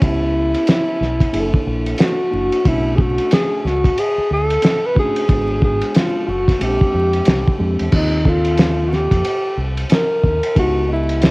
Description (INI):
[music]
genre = hip hop, jazz-hop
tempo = 91 BPM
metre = 4/4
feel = swing 62% on 16ths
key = unclear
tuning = A4 = 439 Hz
[part]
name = breathy tenor saxophone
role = melody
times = 0.0-11.3 s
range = D#4 to B4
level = -19 LUFS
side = equal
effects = cassette tape
[part]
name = mellow tine electric piano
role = accompaniment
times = 0.0-11.3 s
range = G#3 to D#5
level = -24 LUFS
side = equal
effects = slow stereo tremolo
[part]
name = deep dub fingered electric bass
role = bass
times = 0.0-11.3 s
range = F#1 to E#2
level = -21 LUFS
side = equal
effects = none
[part]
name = cloth-damped thuddy drum kit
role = drums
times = 0.0-11.3 s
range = crash cymbal, hi-hat, kick drum, ride cymbal, snare drum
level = -18 LUFS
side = equal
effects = none
[sound]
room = small room reverb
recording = home recording on cassette, vinyl crackle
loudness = -14 LUFS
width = side -25 dB against mid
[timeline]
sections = 0.0-7.9 A section; 7.9-11.3 B section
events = none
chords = 0.0 C#m7b5; 1.3 F#7alt; 2.7 Bm7; 5.3 G#m7b5; 6.6 A#13; 7.9 D#69; 10.6 C#m7b5